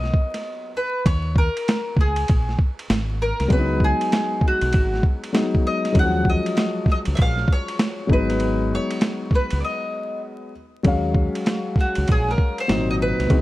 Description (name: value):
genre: hip hop, jazz-hop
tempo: 98 BPM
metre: 4/4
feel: swing 64% on 16ths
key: Eb minor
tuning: A4 = 445 Hz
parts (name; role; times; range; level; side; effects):
- mandolin; melody; 0.0-13.4 s; Gb4 to Gb5; -25 LUFS; equal; none
- dark concert grand piano; accompaniment; 0.0-13.4 s; Bb2 to F5; -25 LUFS; left 3 dB; none
- deep dub fingered electric bass; bass; 0.0-13.4 s; Ab1 to Eb2; -24 LUFS; equal; none
- boom bap sampler-style drum kit; drums; 0.0-13.4 s; hi-hat, kick drum, ride cymbal, snare drum; -20 LUFS; equal; none
room: little or no reverb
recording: dark, warm production, vinyl crackle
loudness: -18 LUFS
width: side -17 dB against mid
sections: 0.0-1.1 A section; 1.1-10.9 B section; 10.9-13.4 C section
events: break 0.4-1.1, 9.6-10.9; mandolin solo 10.9-13.4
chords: 0.0 Abm7 (rootless); 1.1 Eb7sus4; 2.9 Abadd9; 3.5 Db9sus4; 6.0 Ebm11; 8.1 Abm7; 10.9 Ebm11; 12.7 Ab9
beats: 0.45 | 1.06 1.67 2.28 2.90 | 3.51 4.12 4.73 5.34 | 5.96 6.57 7.18 7.79 | 8.40 9.02 9.63 10.24 | 10.85 11.47 12.08 12.69 | 13.30